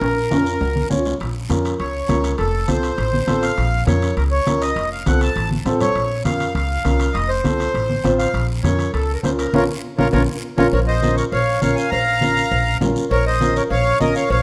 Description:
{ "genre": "latin, cumbia", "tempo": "202 BPM", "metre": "4/4", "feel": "straight", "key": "Bb harmonic minor, Bb minor from 10.7 s", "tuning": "A4 = 440 Hz", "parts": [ { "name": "accordion", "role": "melody", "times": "0.0-14.4 s", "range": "F4 to Bb5", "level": "-23 LUFS", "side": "equal", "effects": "none" }, { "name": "upright bass", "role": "bass", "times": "0.0-14.4 s", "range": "F1 to F2", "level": "-24 LUFS", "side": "equal", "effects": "none" }, { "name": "guiro", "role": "percussion", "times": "0.0-14.4 s", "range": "none", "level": "-39 LUFS", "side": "equal", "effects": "none" }, { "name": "timbales and cowbell", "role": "percussion", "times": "0.0-14.4 s", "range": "none", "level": "-32 LUFS", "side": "equal", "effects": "none" }, { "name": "dark upright piano", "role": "accompaniment", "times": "0.3-14.2 s", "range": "C4 to Db5", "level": "-26 LUFS", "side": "equal", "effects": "none" }, { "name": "congas", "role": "percussion", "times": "0.3-14.2 s", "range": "none", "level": "-27 LUFS", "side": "equal", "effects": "none" } ], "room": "moderate recital hall reverb, RT60 1.3 s", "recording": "close, detailed microphones", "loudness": "-19 LUFS", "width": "mono", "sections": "0.0-1.2 A section; 1.2-10.7 A section; 10.7-14.4 B section", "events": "drum fill 0.0-1.2, 5.5-6.0, 9.8-10.7; band accent 9.5-10.7", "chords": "0.0 Bbm; 2.4 F; 3.6 Bbm; 4.8 F; 6.0 Bbm; 7.1 F; 8.3 Bbm" }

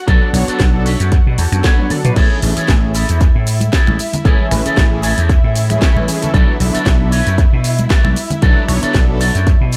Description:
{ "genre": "nu-disco, nu disco", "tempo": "115 BPM", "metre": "4/4", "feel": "swing 55% on 16ths", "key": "unclear", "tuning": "A4 = 440 Hz", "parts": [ { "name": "muted symphonic violin section", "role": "sustained chords", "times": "0.0-9.8 s", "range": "E4 to F#5", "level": "-28 LUFS", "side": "equal", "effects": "sidechain pumping" }, { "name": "mellow synth brass", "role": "accompaniment", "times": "0.1-9.2 s", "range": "E3 to C#5", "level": "-24 LUFS", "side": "equal", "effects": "chorus, phaser, sidechain pumping, analog delay" }, { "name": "electric guitar with an envelope filter", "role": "riff", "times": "0.1-9.8 s", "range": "E4 to A5", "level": "-25 LUFS", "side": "equal", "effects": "lush chorus, analog delay" }, { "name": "vintage slap bass", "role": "bass", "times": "0.1-9.8 s", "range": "A1 to B2", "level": "-18 LUFS", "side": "equal", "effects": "none" }, { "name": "electronic kick drum", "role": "drums", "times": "0.1-9.6 s", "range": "none", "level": "-15 LUFS", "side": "equal", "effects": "small room ambience" }, { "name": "house drum kit", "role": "drums", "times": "0.1-9.8 s", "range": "crash cymbal, finger snaps, hi-hat, shaker, snare drum, toms", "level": "-25 LUFS", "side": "equal", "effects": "small room ambience, analog delay" }, { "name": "tube shaker and congas", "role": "percussion", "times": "2.2-9.8 s", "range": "none", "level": "-28 LUFS", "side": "equal", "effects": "none" } ], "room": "digital ambience", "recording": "echo-heavy mix", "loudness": "-14 LUFS", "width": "mono", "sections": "0.0-9.8 A section", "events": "clean electric guitar fill 1.1-2.2; drum fill 1.6-2.2", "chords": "0.0 Bm7; 2.2 Amaj7; 6.3 Bm7" }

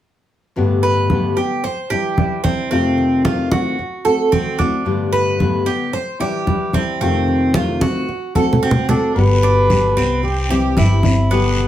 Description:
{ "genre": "latin, Cuban son and guajira", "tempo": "112 BPM", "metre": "4/4", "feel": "straight", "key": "G major", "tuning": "A4 = 440 Hz", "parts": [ { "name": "nylon-string guitar", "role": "accompaniment", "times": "0.6-11.7 s", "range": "F2 to G4", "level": "-19 LUFS", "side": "left 2 dB", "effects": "none" }, { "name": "congas", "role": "percussion", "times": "0.6-11.7 s", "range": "none", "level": "-20 LUFS", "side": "equal", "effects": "none" }, { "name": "Cuban tres", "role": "arpeggios", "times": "0.8-11.7 s", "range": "B3 to C5", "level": "-20 LUFS", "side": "right 4 dB", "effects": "none" }, { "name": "trumpet with bucket mute", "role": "melody", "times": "8.9-11.0 s", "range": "G4 to B4", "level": "-18 LUFS", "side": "equal", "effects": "plate reverb" }, { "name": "upright bass", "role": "bass", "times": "9.2-11.7 s", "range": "G1 to C2", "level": "-16 LUFS", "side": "equal", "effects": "none" }, { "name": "guiro", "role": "percussion", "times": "9.2-11.7 s", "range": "none", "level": "-30 LUFS", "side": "left 3 dB", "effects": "none" } ], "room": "wet studio reverb, RT60 0.5 s", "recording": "heard from further back in the room", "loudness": "-14 LUFS", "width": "side -12 dB against mid", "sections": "0.6-9.2 A section; 9.2-11.7 B section", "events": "drum fill 8.4-9.2", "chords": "0.6 Gadd9; 1.6 Cadd9; 2.7 F7; 3.8 D7; 4.9 Gadd9; 5.9 Cadd9; 7.0 F7; 8.1 D7; 9.2 G; 10.2 C" }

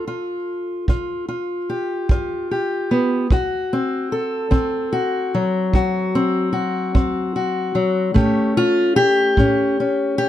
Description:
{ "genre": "acoustic country blues, solo or duo", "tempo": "49 BPM (dotted quarters)", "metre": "12/8", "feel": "straight", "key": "D mixolydian", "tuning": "A4 = 442 Hz", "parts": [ { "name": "fingerpicked steel-string acoustic guitar", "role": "melody", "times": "0.0-10.3 s", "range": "D2 to A4", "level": "-18 LUFS", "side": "left 1 dB", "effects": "none" }, { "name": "kick drum", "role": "drums", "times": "0.9-9.6 s", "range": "none", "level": "-18 LUFS", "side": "right 1 dB", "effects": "none" } ], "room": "light reverb", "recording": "none", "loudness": "-17 LUFS", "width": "side -12 dB against mid", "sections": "0.0-10.3 A section", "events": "none", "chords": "0.0 G7(no3); 3.3 D7; 8.2 A7" }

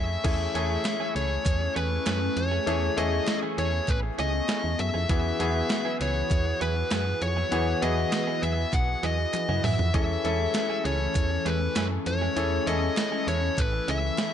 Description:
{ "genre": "1980s-style pop", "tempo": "99 BPM", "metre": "4/4", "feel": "straight", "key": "unclear", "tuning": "A4 = 438 Hz", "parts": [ { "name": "fuzz lead guitar", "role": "melody", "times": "0.0-14.3 s", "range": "B4 to F#5", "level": "-29 LUFS", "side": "left 2 dB", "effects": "distortion" }, { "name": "bright grand piano", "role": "accompaniment", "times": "0.0-14.3 s", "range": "E3 to A4", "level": "-31 LUFS", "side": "left 3 dB", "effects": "none" }, { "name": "direct-recorded clean electric guitar", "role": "riff", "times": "0.0-14.3 s", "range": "E3 to G#4", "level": "-37 LUFS", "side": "right 9 dB", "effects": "lush chorus" }, { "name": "solid FM bass", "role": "bass", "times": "0.0-14.1 s", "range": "A1 to F#2", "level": "-29 LUFS", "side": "right 1 dB", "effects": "none" }, { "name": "glassy FM pad", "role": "sustained chords", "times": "0.8-14.3 s", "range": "E3 to B4", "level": "-35 LUFS", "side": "left 1 dB", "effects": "ensemble chorus, built-in reverb" }, { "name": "clean 12-bit digital drum machine", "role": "drums", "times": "0.2-14.3 s", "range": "crash cymbal, hi-hat, kick drum, snare drum, tambourine, toms", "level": "-29 LUFS", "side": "right 1 dB", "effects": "gated reverb" }, { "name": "group handclap", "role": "percussion", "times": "0.8-14.3 s", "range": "none", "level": "-43 LUFS", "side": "right 10 dB", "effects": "none" } ], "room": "light reverb", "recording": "nothing above 11.0 kHz", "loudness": "-24 LUFS", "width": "side -9 dB against mid", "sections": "0.2-14.3 A section", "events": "drum fill 9.3-9.9", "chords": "0.2 Amaj7; 5.1 Eadd9; 9.9 Amaj7" }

